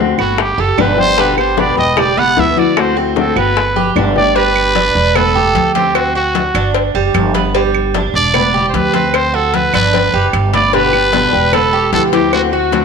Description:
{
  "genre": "latin, Cuban son and guajira",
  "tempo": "151 BPM",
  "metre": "4/4",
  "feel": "straight",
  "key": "G major",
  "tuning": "A4 = 440 Hz",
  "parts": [
    { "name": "nylon-string guitar", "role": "accompaniment", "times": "0.0-4.4, 10.7-12.8 s", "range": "B2 to G4", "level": "-17 LUFS", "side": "left 9 dB", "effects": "none" },
    { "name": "Cuban tres", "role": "arpeggios", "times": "0.0-12.8 s", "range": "G3 to G4", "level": "-17 LUFS", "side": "right 7 dB", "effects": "none" },
    { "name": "upright bass", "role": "bass", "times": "0.0-12.8 s", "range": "E1 to D2", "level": "-19 LUFS", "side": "right 1 dB", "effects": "none" },
    { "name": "growling trumpet", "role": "melody", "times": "0.2-12.8 s", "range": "E4 to F#5", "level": "-15 LUFS", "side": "right 1 dB", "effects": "none" },
    { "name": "bongos and cowbell", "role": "percussion", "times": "0.2-12.8 s", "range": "none", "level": "-21 LUFS", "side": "left 10 dB", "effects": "none" },
    { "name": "claves", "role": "percussion", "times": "0.2-12.5 s", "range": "none", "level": "-24 LUFS", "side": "right 14 dB", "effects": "none" },
    { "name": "congas", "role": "percussion", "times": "0.2-12.8 s", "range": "none", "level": "-22 LUFS", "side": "left 8 dB", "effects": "none" }
  ],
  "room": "wet echo chamber reverb, RT60 1.4 s, small room ambience",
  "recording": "1960s-style stereo with parts hard left and right",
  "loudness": "-10 LUFS",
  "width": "side -5 dB against mid",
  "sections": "0.0-4.4 A section; 4.4-12.8 B section",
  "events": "trumpet solo 0.0-4.4; drum fill 3.8-4.4, 9.5-10.7",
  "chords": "0.4 Em7; 2.8 D7; 3.6 G; 5.2 Em7; 6.0 D7; 6.7 G; 8.3 Em7; 9.1 D7; 9.9 G; 11.5 Em7; 12.3 D7"
}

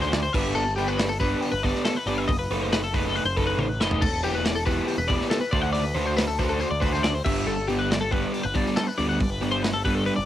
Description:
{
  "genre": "math rock and midwest emo",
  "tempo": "139 BPM",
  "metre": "4/4",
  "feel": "straight",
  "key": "G major",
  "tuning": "A4 = 440 Hz",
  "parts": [
    { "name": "twelve-string electric guitar", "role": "arpeggios", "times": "0.0-10.3 s", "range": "G4 to F#5", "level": "-28 LUFS", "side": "left 4 dB", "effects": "analog chorus, cassette tape" },
    { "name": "overdriven semi-hollow guitar", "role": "riff", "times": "0.0-10.1 s", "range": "G3 to C5", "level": "-26 LUFS", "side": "right 1 dB", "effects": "cassette tape" },
    { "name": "growling picked electric bass", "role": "bass", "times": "0.0-10.3 s", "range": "E1 to D2", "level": "-30 LUFS", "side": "equal", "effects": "overdrive" },
    { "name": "modern studio drum kit", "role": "drums", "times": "0.0-10.2 s", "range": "crash cymbal, hi-hat, kick drum, snare drum, toms", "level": "-28 LUFS", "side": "equal", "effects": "none" }
  ],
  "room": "studio reverb",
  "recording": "home recording on cassette",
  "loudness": "-22 LUFS",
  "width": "side -12 dB against mid",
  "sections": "0.0-10.3 A section",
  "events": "drum fill 3.6-4.0",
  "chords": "0.3 G6; 2.3 B7/F#; 4.0 Em7; 5.5 D7; 7.3 G"
}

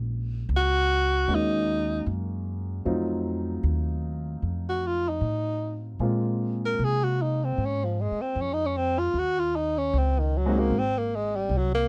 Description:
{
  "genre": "jazz ballad",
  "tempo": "76 BPM",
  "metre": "4/4",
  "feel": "swing 68% on 8ths",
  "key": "unclear",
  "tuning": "A4 = 440 Hz",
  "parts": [
    { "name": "upright bass", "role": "bass", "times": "0.0-11.9 s", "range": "Ab1 to C3", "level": "-30 LUFS", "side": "equal", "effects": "none" },
    { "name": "breathy tenor saxophone", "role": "melody", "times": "0.6-11.9 s", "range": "Eb3 to Bb4", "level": "-28 LUFS", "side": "equal", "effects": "none" },
    { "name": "warm grand piano", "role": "accompaniment", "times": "1.3-10.7 s", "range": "Gb3 to Gb4", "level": "-34 LUFS", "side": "equal", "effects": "none" }
  ],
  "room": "light reverb",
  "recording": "dry, close 1970s-style studio recording",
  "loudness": "-27 LUFS",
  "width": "mono",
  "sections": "0.0-11.9 A section",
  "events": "tenor saxophone solo 0.0-11.9",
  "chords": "0.0 Gb6; 2.9 F7b9; 6.0 Bbsus2; 9.2 Ebm7; 10.7 Ab"
}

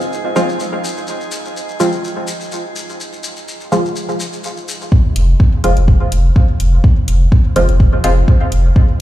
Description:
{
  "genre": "dub techno",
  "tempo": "125 BPM",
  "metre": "4/4",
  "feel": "swing 54% on 16ths",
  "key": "F minor",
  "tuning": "A4 = 440 Hz",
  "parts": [
    { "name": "shekere", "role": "percussion", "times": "0.0-4.9 s", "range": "none", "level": "-28 LUFS", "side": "left 4 dB", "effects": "none" },
    { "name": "drifting glass-harmonics texture", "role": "texture", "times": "0.0-4.9 s", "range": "Eb4 to Ab4", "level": "-28 LUFS", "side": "right 4 dB", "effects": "chorus, built-in reverb, sidechain pumping" },
    { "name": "filtered dub chord stab", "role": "stabs", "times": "0.4-8.1 s", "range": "F3 to F4", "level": "-19 LUFS", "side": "equal", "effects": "chorus, phaser, cassette tape, dub echo" },
    { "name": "electronic kick drum", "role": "drums", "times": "4.9-8.9 s", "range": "none", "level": "-10 LUFS", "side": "equal", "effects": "none" },
    { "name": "soft dub sub bass", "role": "bass", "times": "5.2-8.7 s", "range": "F1", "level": "-12 LUFS", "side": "equal", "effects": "sidechain pumping" },
    { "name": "electronic hi-hat", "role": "drums", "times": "5.2-8.6 s", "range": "none", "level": "-28 LUFS", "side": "left 2 dB", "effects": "none" }
  ],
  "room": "digital ambience",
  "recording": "played on a big sound system in a bare room, large studio reverb",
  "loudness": "-12 LUFS",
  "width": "side -14 dB against mid",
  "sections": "0.0-4.9 A section; 4.9-9.0 B section",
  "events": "none",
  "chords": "0.0 Fm"
}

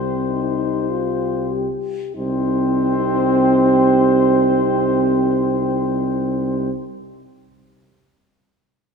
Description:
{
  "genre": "classical, hymn-like piece for brass band",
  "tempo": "32 BPM (dotted quarters)",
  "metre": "6/8",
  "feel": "rubato",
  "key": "C minor",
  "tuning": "A4 = 439 Hz",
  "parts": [
    { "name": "clear flugelhorn", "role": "melody", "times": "0.0-6.7 s", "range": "C5", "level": "-25 LUFS", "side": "left 8 dB", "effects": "none" },
    { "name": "mellow French horn section", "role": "second line", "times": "0.0-6.7 s", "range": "G4", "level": "-23 LUFS", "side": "right 9 dB", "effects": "none" },
    { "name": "bright trombone", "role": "accompaniment", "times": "0.0-6.7 s", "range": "C4", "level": "-20 LUFS", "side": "right 3 dB", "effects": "none" },
    { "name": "warm tuba", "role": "bass", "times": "0.0-6.7 s", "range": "C2", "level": "-22 LUFS", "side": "left 2 dB", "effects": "none" },
    { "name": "clear euphonium", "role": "accompaniment", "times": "0.3-6.7 s", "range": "Eb4 to G4", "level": "-25 LUFS", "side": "left 8 dB", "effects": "none" }
  ],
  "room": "wet concert hall reverb, RT60 1.9 s",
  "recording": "minimal, uncompressed stereo recording",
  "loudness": "-16 LUFS",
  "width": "side -5 dB against mid",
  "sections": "0.0-2.2 A section; 2.2-5.9 B section",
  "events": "slowing down 0.0-2.2",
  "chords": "0.0 Cm"
}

